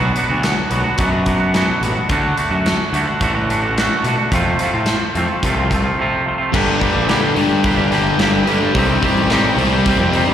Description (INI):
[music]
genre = quiet-loud alternative rock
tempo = 108 BPM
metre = 4/4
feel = straight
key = unclear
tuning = A4 = 442 Hz
[part]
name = twangy electric guitar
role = arpeggios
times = 0.0-10.3 s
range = F2 to G4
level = -18 LUFS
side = right 1 dB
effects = digital delay, slapback echo
[part]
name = fuzz picked electric bass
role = bass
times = 0.0-10.3 s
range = G1 to B2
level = -20 LUFS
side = equal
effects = overdrive
[part]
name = big rock drum kit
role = drums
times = 0.2-10.3 s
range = crash cymbal, hi-hat, kick drum, snare drum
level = -22 LUFS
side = left 1 dB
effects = none
[part]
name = distorted electric guitar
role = riff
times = 6.5-10.3 s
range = G2 to C4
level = -17 LUFS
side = left 1 dB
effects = distortion, slapback echo
[sound]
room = light reverb, studio ambience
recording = live gig heard through the venue's PA, recital hall reverb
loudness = -14 LUFS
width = side -9 dB against mid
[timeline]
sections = 0.0-6.5 A section; 6.5-10.3 B section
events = none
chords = 0.0 Bm; 4.3 F; 6.5 Gm; 8.8 Cm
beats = 0.43 0.98 1.54 | 2.09 2.65 3.20 3.76 | 4.32 4.87 5.42 5.98 | 6.54 7.09 7.64 8.20 | 8.75 9.31 9.86